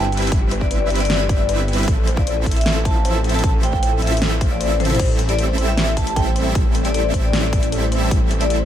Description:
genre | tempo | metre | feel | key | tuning
future bass | 154 BPM | 4/4 | half-time | A minor | A4 = 440 Hz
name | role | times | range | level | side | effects
vibraphone with hard mallets | melody | 0.0-8.6 s | C5 to A5 | -25 LUFS | left 3 dB | sidechain pumping, tape echo
thumb-piano-like synth pluck | arpeggios | 0.0-8.6 s | G4 to G5 | -31 LUFS | left 2 dB | chorus, sidechain pumping, ping-pong delay
supersaw chords | riff | 0.0-8.7 s | F3 to E5 | -24 LUFS | right 2 dB | sidechain pumping
wide detuned saw bass | bass | 0.0-8.7 s | G1 to A1 | -21 LUFS | equal | chorus, sidechain pumping
big-room dance drum kit | drums | 0.1-8.6 s | crash cymbal, hi-hat, snare drum, toms | -25 LUFS | equal | none
electronic kick drum | drums | 0.3-8.2 s | none | -19 LUFS | equal | none
ethereal airy pad | sustained chords | 5.6-8.7 s | E3 to G4 | -30 LUFS | left 1 dB | ensemble chorus, built-in reverb, sidechain pumping
room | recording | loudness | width
little or no reverb | none | -16 LUFS | side -10 dB against mid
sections
0.0-5.0 A section; 5.0-8.7 A section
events
drop 0.0-5.0, 5.0-8.7; drum fill 4.8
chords
0.0 Cmaj7/G; 1.9 Fmaj7/A; 5.0 Am7

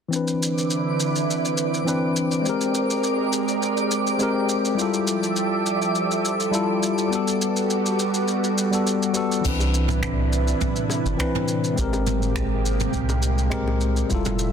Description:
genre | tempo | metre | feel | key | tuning
sunset chillout | 103 BPM | 4/4 | straight | C major | A4 = 440 Hz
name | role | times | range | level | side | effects
bright tine electric piano | accompaniment | 0.1-14.5 s | E3 to B4 | -24 LUFS | moving between left 5 dB and right 6 dB | auto-pan, low-pass filter, digital delay
lush unison pad | sustained chords | 0.1-14.5 s | C3 to E5 | -27 LUFS | equal | chorus, phaser
jazz brush drum kit | drums | 0.1-14.5 s | crash cymbal, finger snaps, shaker, toms | -28 LUFS | right 1 dB | none
twinkling granular texture | texture | 0.5-9.5 s | D5 to D6 | -30 LUFS | equal | built-in reverb
round analog bass | bass | 9.4-14.5 s | F1 to C2 | -23 LUFS | equal | none
electronic kick drum | drums | 9.4-14.2 s | none | -29 LUFS | equal | none
bongos | percussion | 9.6-14.4 s | none | -35 LUFS | left 2 dB | none
room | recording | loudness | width
light reverb, small room ambience | dense, heavily limited modern master | -20 LUFS | side -7 dB against mid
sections
0.1-9.4 A section; 9.4-14.5 B section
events
filter sweep on tine electric piano 0.1-9.4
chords
0.1 Cmaj9; 2.5 Abmaj9; 4.8 Fmaj9; 7.1 Gmaj9; 9.4 Cmaj9; 11.8 Abmaj9

